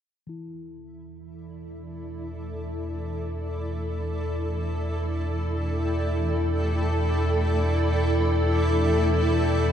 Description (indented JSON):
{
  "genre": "dark ambient drone",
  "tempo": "free time",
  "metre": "none",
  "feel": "none",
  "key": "unclear",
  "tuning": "A4 = 439 Hz",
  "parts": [
    { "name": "granular cloud pad", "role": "sustained chords", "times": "1.6-9.7 s", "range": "E4 to G5", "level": "-26 LUFS", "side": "equal", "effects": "built-in reverb" },
    { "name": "deep rumbling drone", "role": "drone", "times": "1.5-9.7 s", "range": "E2 to B2", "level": "-26 LUFS", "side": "equal", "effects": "built-in reverb, lush chorus" },
    { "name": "bronze singing bowl", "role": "texture", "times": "0.3-9.7 s", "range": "E3 to E4", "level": "-42 LUFS", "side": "left 1 dB", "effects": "none" }
  ],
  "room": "wet cathedral reverb, RT60 7.2 s",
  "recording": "dark, warm production",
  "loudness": "-23 LUFS",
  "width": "side -9 dB against mid",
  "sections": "0.3-9.7 A section",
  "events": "fade-in on synth drone 0.3-9.7; fade-in on ambient pad 0.3-9.7; fade-in on singing bowl 0.3-9.7",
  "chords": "0.3 G69/E",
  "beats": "free time"
}